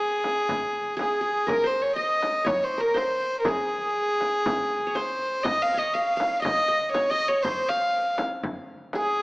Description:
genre	Arabic maqam ensemble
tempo	121 BPM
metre	4/4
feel	straight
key	unclear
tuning	A4 = 440 Hz
part	rich violin	melody	0.0-9.2 s	Ab4 to F5	-24 LUFS	equal	none
part	qanun	second line	0.0-9.2 s	Ab4 to F5	-32 LUFS	right 1 dB	none
part	frame drum	percussion	0.2-9.0 s	none	-33 LUFS	left 1 dB	none
room	moderate concert hall reverb, RT60 2.3 s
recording	small speaker sound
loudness	-23 LUFS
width	side -23 dB against mid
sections	0.0-9.2 A section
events	none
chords	none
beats	0.48 0.98 | 1.47 1.97 2.47 2.97 | 3.46 3.96 4.46 4.95 | 5.45 5.95 6.45 6.94 | 7.44 7.94 8.44 8.93

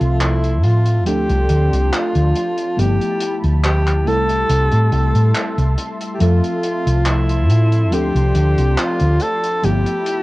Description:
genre	vaporwave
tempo	70 BPM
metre	4/4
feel	swing 53% on 16ths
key	C major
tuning	A4 = 441 Hz
part	clear alto saxophone	melody	0.0-10.2 s	E4 to A4	-20 LUFS	equal	tape echo
part	FM electric piano with soft pad layer	accompaniment	0.0-10.2 s	F3 to E5	-24 LUFS	equal	wide subtle chorus
part	lush unison pad	sustained chords	0.0-10.2 s	F3 to C6	-30 LUFS	equal	chorus
part	hollow-body short-scale fingered electric bass	bass	0.0-9.8 s	G1 to A2	-15 LUFS	equal	tube saturation
part	modern studio drum kit	drums	0.0-10.2 s	handclaps, hi-hat	-26 LUFS	equal	cassette tape
room	small room ambience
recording	home recording on cassette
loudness	-14 LUFS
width	side -19 dB against mid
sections	0.0-10.2 A section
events	none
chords	0.0 Fmaj7; 1.1 Dm7; 2.8 G13; 4.1 C6; 6.2 Fmaj7; 7.9 Dm7; 9.6 G13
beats	0.21 1.06 1.92 | 2.78 3.64 4.49 5.35 | 6.21 7.07 7.92 8.78 | 9.64

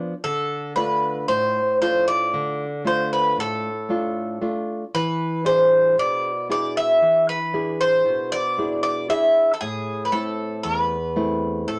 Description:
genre	greek folk, Greek bouzouki band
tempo	115 BPM (eighths)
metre	9/8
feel	straight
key	unclear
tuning	A4 = 437 Hz
part	nylon-string guitar	accompaniment	0.0-11.8 s	E2 to G#4	-29 LUFS	equal	none
part	Greek bouzouki	melody	0.2-11.8 s	G#4 to E5	-22 LUFS	equal	none
room	moderate studio reverb, RT60 0.5 s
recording	none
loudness	-22 LUFS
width	mono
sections	0.0-11.8 A section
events	none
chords	0.2 Dm; 4.9 E7; 9.6 Am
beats	| 0.23 0.75 1.28 1.80 2.33 2.85 3.37 3.89 4.42 | 4.94 5.46 5.98 6.50 7.02 7.54 8.06 8.58 9.10 | 9.61 10.13 10.65 11.16 11.68

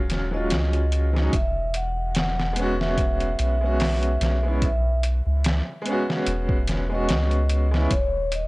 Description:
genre	trip hop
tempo	73 BPM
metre	4/4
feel	swing 55% on 16ths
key	unclear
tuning	A4 = 441 Hz
part	bright upright piano	accompaniment	0.0-7.9 s	Gb3 to F#4	-27 LUFS	equal	tremolo
part	soft dub sub bass	bass	0.0-8.5 s	Eb1 to Db2	-23 LUFS	equal	none
part	trip hop sampler-style drum kit	drums	0.1-8.5 s	hi-hat, kick drum, snare drum	-26 LUFS	equal	overdrive, small room reverb
part	vibraphone with soft mallets	melody	0.3-8.5 s	Db5 to F#5	-30 LUFS	equal	dub echo
room	small room ambience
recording	dry, gritty hardware recording, transformer saturation, cassette tape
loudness	-20 LUFS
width	side -22 dB against mid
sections	0.0-8.5 A section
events	none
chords	0.0 Ebm11; 1.3 E69; 7.9 Eb7(no3)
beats	0.51 | 1.33 2.15 2.98 3.80 | 4.62 5.44 6.26 7.09 | 7.91

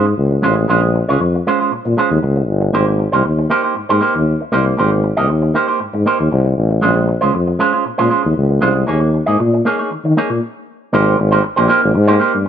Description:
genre	disco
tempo	117 BPM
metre	4/4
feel	straight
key	Ab major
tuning	A4 = 440 Hz
part	electric guitar with an envelope filter	accompaniment	0.0-12.5 s	Ab3 to Eb5	-16 LUFS	right 3 dB	none
part	warm tuba	bass	0.0-12.4 s	G1 to Eb3	-14 LUFS	left 1 dB	none
room	light reverb, small room ambience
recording	none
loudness	-13 LUFS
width	side -9 dB against mid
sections	0.0-10.9 A section; 10.9-12.5 B section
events	stop 10.4-10.9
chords	0.0 Bbm9; 2.7 Abmaj9; 6.8 Bbm9; 8.9 Eb7sus4; 10.9 Abmaj9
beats	0.18 | 0.69 1.20 1.71 2.23 | 2.74 3.25 3.76 4.28 | 4.79 5.30 5.81 6.32 | 6.84 7.35 7.86 8.37 | 8.88 9.40 9.91 10.42 | 10.93 11.44 11.95 12.46

